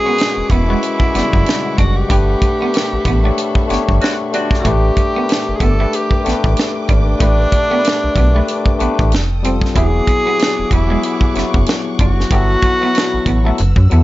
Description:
R&B, neo-soul; 94 BPM; 4/4; swing 57% on 16ths; A4 = 440 Hz
breathy tenor saxophone; melody; 0.0-13.9 s; D4 to A4; -19 LUFS; equal; plate reverb
overdriven tine electric piano; accompaniment; 0.0-14.0 s; C#3 to D5; -20 LUFS; left 4 dB; plate reverb
warm studio string section; sustained chords; 0.0-14.0 s; G#4 to E6; -29 LUFS; equal; plate reverb
clean electric guitar; second line; 0.1-14.0 s; G#3 to G4; -23 LUFS; right 4 dB; plate reverb
tight funk drum kit; drums; 0.2-14.0 s; hi-hat, kick drum, snare drum; -17 LUFS; equal
slap-like FM bass; bass; 0.4-14.0 s; E1 to F#2; -15 LUFS; equal
clear saxophone section; stabs; 4.0-4.8 s; D3 to F#4; -24 LUFS; left 1 dB
light reverb; nothing above 7.6 kHz; -12 LUFS; side -16 dB against mid
0.0-14.0 A section
band accent 2.1-4.7
0.0 E13; 2.1 Gmaj9#11; 4.7 A9sus4; 9.1 F9; 9.8 E13; 12.3 Gmaj9#11

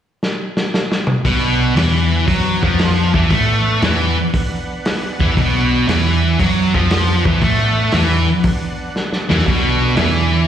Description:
blues rock power trio and southern rock; 117 BPM; 4/4; swing 68% on 8ths; B minor; A4 = 440 Hz
vintage drum kit; drums; 0.2-10.1 s; hi-hat, kick drum, snare drum, toms; -20 LUFS; equal
thick fuzz guitar; riff; 1.2-10.5 s; B2 to A3; -16 LUFS; equal; distortion, slapback echo
overdriven tonewheel organ; sustained chords; 1.3-10.5 s; D3 to F#5; -28 LUFS; right 4 dB; slow rotary speaker, chorus vibrato
vintage muted picked electric bass; bass; 1.3-10.5 s; B1 to A2; -18 LUFS; equal
little or no reverb; live gig heard through the venue's PA, recital hall reverb; -13 LUFS; side -9 dB against mid
0.0-1.2 A section; 1.2-10.5 B section
drum fill 0.2-1.2, 9.0-9.5
0.0 N.C.; 1.2 Bm

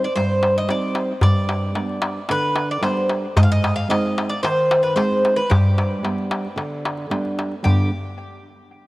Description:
greek folk, Greek bouzouki band; 112 BPM; 4/4; straight; A4 = 440 Hz
Greek bouzouki; melody; 0.0-7.9 s; G4 to F5; -22 LUFS; equal; cassette tape, analog delay
flamenco guitar; accompaniment; 0.0-7.9 s; G2 to Eb4; -23 LUFS; right 1 dB; cassette tape
darbuka; percussion; 0.2-7.9 s; -21 LUFS; left 1 dB
moderate lush hall reverb, RT60 2.6 s; home recording on cassette; -18 LUFS; side -19 dB against mid
0.0-7.6 A section; 7.6-8.9 B section
0.0 Cm; 1.2 G; 3.4 Ab; 5.5 G

